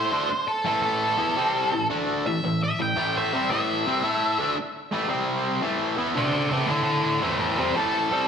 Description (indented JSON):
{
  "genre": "rock",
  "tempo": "113 BPM",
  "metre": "4/4",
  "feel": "swing 67% on 8ths",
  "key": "A minor",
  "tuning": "A4 = 438 Hz",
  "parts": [
    { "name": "octave-fuzz lead guitar", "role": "melody", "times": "0.0-8.3 s", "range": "A4 to G5", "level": "-25 LUFS", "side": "equal", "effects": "distortion, slapback echo, digital delay" },
    { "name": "distorted electric guitar", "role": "riff", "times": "0.0-8.3 s", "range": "A2 to A4", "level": "-24 LUFS", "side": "equal", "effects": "overdrive, slapback echo" }
  ],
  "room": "wet recital hall reverb, RT60 1.6 s",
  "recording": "big arena sound",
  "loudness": "-22 LUFS",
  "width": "side -7 dB against mid",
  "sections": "0.0-8.3 A section",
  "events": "none",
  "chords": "0.0 Am; 5.1 C5; 5.6 Am",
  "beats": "0.30 | 0.83 1.37 1.90 2.43 | 2.96 3.50 4.03 4.56 | 5.09 5.62 6.16 6.69 | 7.22 7.75"
}